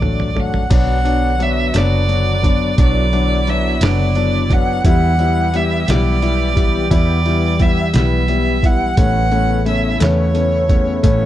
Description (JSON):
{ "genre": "six-eight pop ballad", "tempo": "58 BPM (dotted quarters)", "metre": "6/8", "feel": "straight", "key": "unclear", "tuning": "A4 = 440 Hz", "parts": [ { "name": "rich violin", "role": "melody", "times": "0.0-11.3 s", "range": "C#5 to F#5", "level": "-20 LUFS", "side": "right 2 dB", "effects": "none" }, { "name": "warm concert grand piano", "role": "accompaniment", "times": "0.0-11.3 s", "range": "F#3 to E4", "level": "-20 LUFS", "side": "left 5 dB", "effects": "none" }, { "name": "vintage muted fingered electric bass", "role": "bass", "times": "0.0-11.3 s", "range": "F#1 to E2", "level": "-17 LUFS", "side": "right 1 dB", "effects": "none" }, { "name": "trip hop sampler-style drum kit", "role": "drums", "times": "0.0-11.2 s", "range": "crash cymbal, hi-hat, kick drum, snare drum, toms", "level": "-17 LUFS", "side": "right 1 dB", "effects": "none" }, { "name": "sweeping resonant pad", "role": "sustained chords", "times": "0.7-11.3 s", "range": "C#3 to G4", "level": "-24 LUFS", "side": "equal", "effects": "chorus" } ], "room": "little or no reverb", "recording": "dry, close 1970s-style studio recording", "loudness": "-13 LUFS", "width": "side -13 dB against mid", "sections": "0.7-11.3 A section", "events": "drum fill 0.0-0.7", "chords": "0.0 D; 0.7 Bm; 4.8 Em; 9.0 Aadd9" }